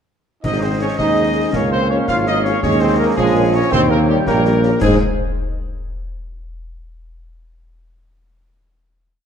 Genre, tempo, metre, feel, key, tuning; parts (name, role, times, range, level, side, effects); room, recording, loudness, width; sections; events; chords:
military-style march for wind band; 110 BPM (dotted quarters); 6/8; straight; Ab major; A4 = 440 Hz
clear trumpet section; melody; 0.4-5.0 s; G4 to F5; -22 LUFS; left 1 dB
warm woodwind section; second line; 0.4-5.0 s; C5 to Ab5; -25 LUFS; left 2 dB
mellow trombone section; sustained chords; 0.4-5.0 s; G3 to F4; -21 LUFS; right 1 dB
warm tuba; bass; 0.4-5.0 s; Ab1 to Ab2; -18 LUFS; right 1 dB
concert snare drum, clash cymbals and concert bass drum; drums; 0.4-5.0 s; -26 LUFS; left 1 dB
mellow French horn section; accompaniment; 0.6-5.0 s; Eb4 to Db5; -26 LUFS; left 6 dB
warm euphonium; second line; 1.0-4.5 s; Eb3 to Bb3; -21 LUFS; right 3 dB
wet scoring stage reverb, RT60 1.7 s; dark, warm production; -14 LUFS; side -8 dB against mid
0.4-4.8 A section; 4.8-5.9 final chord
0.4 Ab; 1.5 Db; 2.6 Eb7sus4; 3.7 Eb7; 4.8 Ab